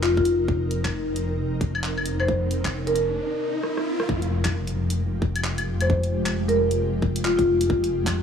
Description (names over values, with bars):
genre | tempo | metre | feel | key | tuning
future garage | 133 BPM | 4/4 | swing 62% on 16ths | F minor | A4 = 440 Hz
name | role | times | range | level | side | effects
marimba with medium mallets | melody | 0.0-3.0, 5.8-8.0 s | F4 to C5 | -24 LUFS | left 1 dB | vintage 12-bit sampler grit, analog delay
ethereal airy pad | sustained chords | 0.0-8.2 s | Ab3 to Bb4 | -30 LUFS | equal | ensemble chorus, built-in reverb, tremolo, sidechain pumping
dark detuned saw bass | bass | 0.0-8.2 s | F1 | -26 LUFS | left 1 dB | transformer saturation, sidechain pumping
garage drum kit | drums | 0.0-8.1 s | claves, handclaps, hi-hat, rim click | -30 LUFS | left 1 dB | small room reverb
electronic kick drum | drums | 0.2-8.1 s | none | -26 LUFS | left 1 dB | small room reverb
riser and impact | sound effects | 2.0-5.9 s | none | -33 LUFS | equal | none
room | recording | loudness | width
light reverb | dry, gritty hardware recording | -21 LUFS | side -7 dB against mid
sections
0.0-4.1 A section; 4.1-8.2 B section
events
riser 2.0-4.1; break 3.2-4.1; drum fill 3.6-4.1; impact 4.1-5.9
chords
0.0 Cm7/F; 4.1 Fmadd9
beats
0.03 | 0.48 0.93 1.38 1.83 | 2.28 2.74 3.19 3.64 | 4.09 4.54 4.99 5.44 | 5.89 6.34 6.80 7.25 | 7.70 8.15